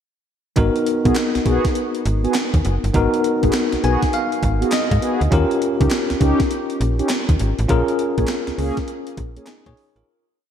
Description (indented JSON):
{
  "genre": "R&B, new jack swing",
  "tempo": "101 BPM",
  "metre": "4/4",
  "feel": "swing 64% on 16ths",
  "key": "G# dorian",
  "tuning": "A4 = 438 Hz",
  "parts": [
    { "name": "bell-like tine electric piano", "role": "accompaniment", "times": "0.6-10.2 s", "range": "B3 to G#5", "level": "-21 LUFS", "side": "left 2 dB", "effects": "medium stereo tremolo" },
    { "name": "slap-like FM bass", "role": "bass", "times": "0.6-10.0 s", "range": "F#1 to A#2", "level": "-20 LUFS", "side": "equal", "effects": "none" },
    { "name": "gated 80s digital drum machine", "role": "drums", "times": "0.6-10.1 s", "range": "handclaps, hi-hat, kick drum, snare drum", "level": "-22 LUFS", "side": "right 1 dB", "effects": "gated reverb, gated reverb snare, overdrive" },
    { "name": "mellow synth brass", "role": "stabs", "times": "1.0-9.5 s", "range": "A#3 to G#4", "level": "-24 LUFS", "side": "right 1 dB", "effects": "chorus, ping-pong delay" }
  ],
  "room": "moderate lush hall reverb, RT60 2.5 s",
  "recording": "dreamy mix soaked in reverb",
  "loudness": "-16 LUFS",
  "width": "side -9 dB against mid",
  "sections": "0.6-10.1 verse",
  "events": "tine electric piano fill 3.5-5.3; fade-out 7.7-10.1",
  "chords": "0.6 G#m7; 5.3 D#7; 7.7 A#m7",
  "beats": "| 0.56 1.16 1.75 2.35 | 2.94 3.53 4.13 4.72 | 5.32 5.91 6.50 7.10 | 7.69 8.29 8.88 9.47"
}